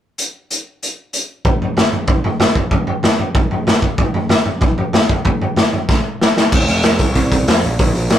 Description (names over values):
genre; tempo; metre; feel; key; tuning
punk rock; 189 BPM; 4/4; straight; unclear; A4 = 441 Hz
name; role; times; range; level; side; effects
raw garage drum kit; drums; 0.2-8.2 s; crash cymbal, hi-hat, kick drum, snare drum, toms; -14 LUFS; equal; none
fuzz picked electric bass; bass; 6.5-8.2 s; F1 to F2; -17 LUFS; right 1 dB; overdrive
room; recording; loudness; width
light reverb; rough rehearsal-room recording, tube saturation; -13 LUFS; side -11 dB against mid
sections
0.2-1.5 A section; 1.5-6.5 B section; 6.5-8.2 C section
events
drum fill 5.9-6.5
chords
none